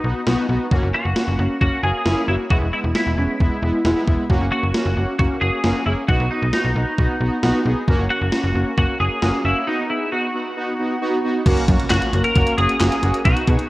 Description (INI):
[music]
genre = synth-pop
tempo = 134 BPM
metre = 4/4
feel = straight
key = F# mixolydian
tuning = A4 = 440 Hz
[part]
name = twelve-string electric guitar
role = melody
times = 0.0-13.7 s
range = D#4 to A#4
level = -24 LUFS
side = equal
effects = ensemble chorus, tape echo, shimmer reverb
[part]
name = analog synth brass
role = accompaniment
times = 0.0-13.6 s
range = G#3 to G#4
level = -22 LUFS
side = equal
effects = chorus, shimmer reverb
[part]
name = slap-like FM bass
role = bass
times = 0.0-13.6 s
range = E1 to B2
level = -21 LUFS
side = equal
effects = none
[part]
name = gated 80s digital drum machine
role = drums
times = 0.3-13.7 s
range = crash cymbal, handclaps, hi-hat, kick drum, snare drum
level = -21 LUFS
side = equal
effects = gated reverb, gated reverb snare, overdrive
[part]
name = swell and impact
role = sound effects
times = 10.5-13.3 s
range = none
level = -30 LUFS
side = equal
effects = none
[sound]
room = moderate plate reverb, RT60 1.6 s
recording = worn, warbling old tape, cassette tape, warbly pitch drift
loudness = -17 LUFS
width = side -18 dB against mid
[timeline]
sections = 0.0-11.5 A section; 11.5-13.7 B section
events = break 9.7-11.5; swell 10.5-11.5; impact 11.5-13.3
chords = 0.0 B; 0.7 F#add9; 2.5 E; 4.3 F#add9; 6.1 B; 7.9 F#add9; 9.7 B; 11.5 F#add9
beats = 0.27 | 0.71 1.16 1.61 2.06 | 2.50 2.95 3.40 3.85 | 4.30 4.74 5.19 5.64 | 6.09 6.54 6.98 7.43 | 7.88 8.33 8.77 9.22 | 9.67 10.12 10.56 11.01 | 11.46 11.91 12.36 12.80 | 13.25